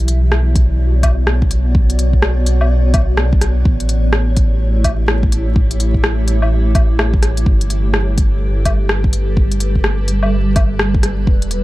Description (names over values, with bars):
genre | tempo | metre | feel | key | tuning
future garage | 126 BPM | 4/4 | swing 62% on 16ths | unclear | A4 = 440 Hz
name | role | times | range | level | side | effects
granular cloud pad | sustained chords | 0.0-11.6 s | G3 to G5 | -23 LUFS | equal | built-in reverb, sidechain pumping
warm sub bass | bass | 0.0-11.6 s | E1 to B1 | -15 LUFS | equal | sidechain pumping
organic electronic drum kit | drums | 0.1-11.6 s | hi-hat, rim click, woodblock | -21 LUFS | equal | none
electronic kick drum | drums | 0.6-11.4 s | none | -14 LUFS | equal | none
room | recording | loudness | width
little or no reverb | vinyl crackle | -12 LUFS | side -17 dB against mid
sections
0.0-11.6 A section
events
none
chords
0.0 Bmadd9; 3.7 A7; 7.5 Gadd9